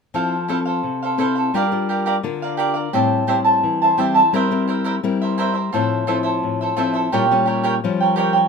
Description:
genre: samba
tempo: 86 BPM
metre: 4/4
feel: straight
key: F major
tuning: A4 = 439 Hz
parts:
  - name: cavaquinho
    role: accompaniment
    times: 0.1-8.5 s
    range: E4 to A5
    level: -18 LUFS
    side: right 3 dB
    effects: none
  - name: nylon-string guitar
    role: accompaniment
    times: 0.1-8.5 s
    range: A2 to Bb4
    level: -21 LUFS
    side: left 5 dB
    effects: none
room: moderate small room ambience, RT60 0.5 s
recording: minimal, uncompressed stereo recording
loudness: -17 LUFS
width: side -5 dB against mid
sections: 0.1-8.5 A section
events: none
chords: 0.1 Fmaj7; 1.5 Gm7; 2.9 Am7; 4.3 C7/G; 5.7 Fmaj7/A; 7.1 Bbm6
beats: | 0.14 0.84 1.54 2.24 | 2.94 3.64 4.33 5.03 | 5.73 6.43 7.13 7.83

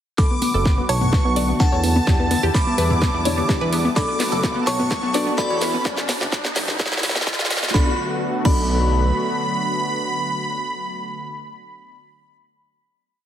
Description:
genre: progressive house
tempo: 127 BPM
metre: 4/4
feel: straight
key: B minor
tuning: A4 = 442 Hz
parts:
  - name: glassy synth bell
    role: melody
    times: 0.2-12.0 s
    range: D5 to D6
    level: -27 LUFS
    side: equal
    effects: chorus, sidechain pumping, tape echo
  - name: soft supersaw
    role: second line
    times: 0.2-12.0 s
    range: A5 to D6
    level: -29 LUFS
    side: right 2 dB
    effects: sidechain pumping, tape echo
  - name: lush unison pad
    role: sustained chords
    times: 0.2-11.2 s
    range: D3 to F#4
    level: -28 LUFS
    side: equal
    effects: chorus, sidechain pumping
  - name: wide unison pluck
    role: arpeggios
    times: 0.2-12.0 s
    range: B3 to D5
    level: -26 LUFS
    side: equal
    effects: sidechain pumping, tape echo
  - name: deep mellow chord stab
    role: stabs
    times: 0.2-12.0 s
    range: B3 to D5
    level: -28 LUFS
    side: left 3 dB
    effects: chorus, phaser, sidechain pumping, tape echo
  - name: fat analog bass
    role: bass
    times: 0.2-9.1 s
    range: F#1 to E2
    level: -23 LUFS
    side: equal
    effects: sidechain pumping
  - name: electronic kick drum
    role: drums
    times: 0.2-8.6 s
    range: none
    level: -20 LUFS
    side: equal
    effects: none
  - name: house drum kit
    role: drums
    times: 0.2-8.6 s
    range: crash cymbal, hi-hat, snare drum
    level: -26 LUFS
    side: equal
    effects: high-pass filter on snare, high-pass filter on hats, high-pass filter on cymbals
  - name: riser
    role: sound effects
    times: 2.6-7.7 s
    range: none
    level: -32 LUFS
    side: equal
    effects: none
  - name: backwards swelling texture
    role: texture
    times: 1.3-5.9 s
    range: A5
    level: -34 LUFS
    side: equal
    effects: built-in reverb, sidechain pumping
  - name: electronic congas and toms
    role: percussion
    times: 0.4-7.7 s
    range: none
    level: -28 LUFS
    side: left 2 dB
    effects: overdrive, sidechain pumping on perc, sidechain pumping on toms
room: moderate lush hall reverb, RT60 1.8 s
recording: heavily compressed radio sound, multiband compression, high-pass filter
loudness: -18 LUFS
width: side -10 dB against mid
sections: 0.2-7.7 build; 7.7-11.5 final chord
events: build-up 0.2-7.7; drum fill 0.2-7.7; filter sweep on synth stab 0.2-5.9; filter sweep 0.2-7.7; riser 2.6-7.7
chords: 0.2 Bm7; 2.1 Em7; 4.0 Bm7; 5.9 N.C.; 7.7 Bm7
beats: | 0.18 0.66 1.13 1.60 | 2.07 2.54 3.02 3.49 | 3.96 4.43 4.91 5.38 | 5.85 6.33 6.80 7.27 | 7.74 8.21 8.69 9.16 | 9.63 10.10 10.58 11.05

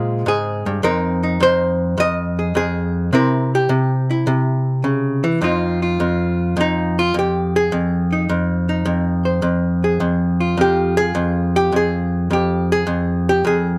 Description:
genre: solo jazz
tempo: 105 BPM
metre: 4/4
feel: swing 69% on 8ths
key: F minor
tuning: A4 = 440 Hz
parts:
  - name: archtop guitar, miked and amplified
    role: solo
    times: 0.0-13.8 s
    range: F2 to Eb5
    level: -18 LUFS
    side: equal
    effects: none
room: light reverb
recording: none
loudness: -18 LUFS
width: mono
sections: 0.0-5.4 A section; 5.4-13.8 B section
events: hollow-body jazz guitar solo 5.4-13.8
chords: 0.0 Bbm9; 0.8 Fm7; 3.1 C; 5.4 Fm9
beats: 0.25 | 0.83 1.40 1.97 2.55 | 3.12 3.69 4.26 4.84 | 5.41 5.98 6.56 7.13 | 7.70 8.28 8.85 9.42 | 10.00 10.57 11.14 11.72 | 12.29 12.86 13.44

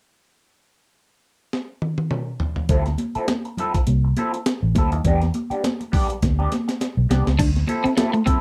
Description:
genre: funk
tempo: 102 BPM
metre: 4/4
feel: swing 56% on 16ths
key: D dorian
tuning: A4 = 440 Hz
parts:
  - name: breakbeat sampler-style drum kit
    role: drums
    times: 1.5-8.4 s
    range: crash cymbal, hi-hat, kick drum, snare drum, toms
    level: -25 LUFS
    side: equal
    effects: none
  - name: electric guitar through a small old amp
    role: accompaniment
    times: 2.7-8.4 s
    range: F3 to A4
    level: -28 LUFS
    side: equal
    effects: wah
  - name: vintage muted fingered electric bass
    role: bass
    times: 2.7-7.9 s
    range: A1 to E2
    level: -22 LUFS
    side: equal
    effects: none
  - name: congas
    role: percussion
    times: 2.7-8.4 s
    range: none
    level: -30 LUFS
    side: equal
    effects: none
  - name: electric guitar at the edge of break-up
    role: riff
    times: 7.4-8.4 s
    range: A3 to D4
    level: -24 LUFS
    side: equal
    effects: analog chorus
room: little or no reverb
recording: dry, close 1970s-style studio recording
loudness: -22 LUFS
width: mono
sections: 0.4-2.7 A section; 2.7-7.4 B section; 7.4-8.4 C section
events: drum fill 1.5-2.7, 6.2-7.4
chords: 0.4 N.C.; 2.7 Dm9; 5.0 Em7 (rootless); 7.4 Dm9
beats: | 0.36 0.95 1.53 2.12 | 2.70 3.29 3.88 4.46 | 5.05 5.63 6.22 6.80 | 7.39 7.97

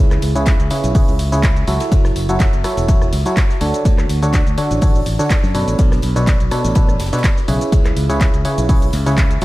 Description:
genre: piano house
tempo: 124 BPM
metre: 4/4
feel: swing 54% on 16ths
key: unclear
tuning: A4 = 440 Hz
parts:
  - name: barking FM electric piano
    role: riff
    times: 0.0-9.4 s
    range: B2 to C#5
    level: -19 LUFS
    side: equal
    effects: chorus, sidechain pumping, low-pass filter, analog delay
  - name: modern bright fingered electric bass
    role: bass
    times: 0.0-9.4 s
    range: E1 to F#2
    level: -20 LUFS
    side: equal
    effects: sidechain pumping
  - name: punchy analog drum machine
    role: drums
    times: 0.1-9.4 s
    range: handclaps, hi-hat, rim click, shaker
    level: -26 LUFS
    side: left 1 dB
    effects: none
  - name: tight funk drum kit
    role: drums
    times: 0.2-9.4 s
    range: hi-hat, ride cymbal, snare drum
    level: -37 LUFS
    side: left 2 dB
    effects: high-pass filter on cymbals, high-pass filter on hats, high-pass filter on snare, high-pass filter on room
  - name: tambourine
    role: percussion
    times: 0.2-9.4 s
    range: none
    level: -38 LUFS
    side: right 1 dB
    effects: none
  - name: electronic kick drum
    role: drums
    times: 0.5-9.3 s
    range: none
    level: -14 LUFS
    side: equal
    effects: none
room: light reverb, small room ambience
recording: none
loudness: -13 LUFS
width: side -18 dB against mid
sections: 0.0-9.4 A section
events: none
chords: 0.0 C#m7; 1.9 F#m7; 3.6 Dmaj7; 5.8 Bm9; 7.7 C#m7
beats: 0.47 0.95 1.43 | 1.92 2.40 2.88 3.37 | 3.85 4.34 4.82 5.30 | 5.79 6.27 6.76 7.24 | 7.72 8.21 8.69 9.18

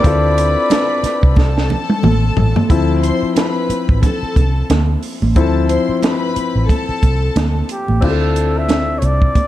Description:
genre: lush 1970s-style soul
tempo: 90 BPM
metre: 4/4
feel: swing 58% on 16ths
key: D dorian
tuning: A4 = 440 Hz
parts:
  - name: breathy flugelhorn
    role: melody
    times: 0.0-1.9, 7.7-9.5 s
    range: G4 to E5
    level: -19 LUFS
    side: equal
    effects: none
  - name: warm studio string section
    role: second line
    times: 0.0-7.6 s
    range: A4 to C6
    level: -23 LUFS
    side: left 2 dB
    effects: slapback echo
  - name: clear grand piano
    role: accompaniment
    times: 0.0-9.5 s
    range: F3 to A4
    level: -20 LUFS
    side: left 6 dB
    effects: none
  - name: vintage muted fingered electric bass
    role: bass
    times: 0.0-9.3 s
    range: A1 to D2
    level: -16 LUFS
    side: equal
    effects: none
  - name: compact cocktail drum kit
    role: drums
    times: 0.0-9.5 s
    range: crash cymbal, hi-hat, kick drum, snare drum, toms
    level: -16 LUFS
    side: equal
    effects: none
  - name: congas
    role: percussion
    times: 0.0-9.5 s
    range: none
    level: -23 LUFS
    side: right 5 dB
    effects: none
room: light reverb, small room ambience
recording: dark, warm production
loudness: -13 LUFS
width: side -14 dB against mid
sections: 0.0-2.7 A section; 2.7-8.0 B section; 8.0-9.5 C section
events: drum fill 1.4-2.7; grand piano solo 2.7-8.0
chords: 0.0 Dm7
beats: | 0.04 0.70 1.37 2.04 | 2.70 3.37 4.03 4.70 | 5.36 6.03 6.69 7.36 | 8.03 8.69 9.36

